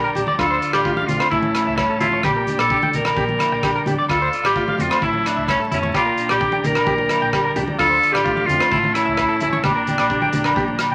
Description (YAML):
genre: highlife guitar band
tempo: 130 BPM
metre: 4/4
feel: straight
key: unclear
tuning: A4 = 441 Hz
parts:
  - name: bright alto saxophone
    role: melody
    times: 0.0-10.9 s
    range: C#4 to Bb4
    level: -23 LUFS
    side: equal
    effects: none
  - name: clean electric guitar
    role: accompaniment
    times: 0.0-10.9 s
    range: G2 to G4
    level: -30 LUFS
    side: equal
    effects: none
  - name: tonewheel organ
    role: sustained chords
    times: 0.0-10.9 s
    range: C#5 to C6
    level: -32 LUFS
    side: equal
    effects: overdrive
  - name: semi-hollow electric guitar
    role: arpeggios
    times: 0.0-10.9 s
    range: E4 to G5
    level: -26 LUFS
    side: equal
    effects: harmonic tremolo
  - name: hollow-body short-scale fingered electric bass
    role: bass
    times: 0.0-10.9 s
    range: A1 to F2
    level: -34 LUFS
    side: equal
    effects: none
  - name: warm soul drum kit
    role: drums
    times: 0.2-10.9 s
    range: hi-hat, kick drum, rim click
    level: -30 LUFS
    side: equal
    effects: none
  - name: congas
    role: percussion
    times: 0.2-10.8 s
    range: none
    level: -30 LUFS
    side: equal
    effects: none
  - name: agogo bells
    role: percussion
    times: 0.4-10.9 s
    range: none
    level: -27 LUFS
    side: equal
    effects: none
room: moderate studio reverb, RT60 0.8 s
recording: vinyl crackle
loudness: -19 LUFS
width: mono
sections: 0.0-10.9 A section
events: none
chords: 0.4 Dm7; 1.3 A; 2.2 Gm/Bb; 4.1 Dm7; 5.0 A; 5.9 Gm/Bb; 7.8 Dm7; 8.7 A; 9.6 Gm/Bb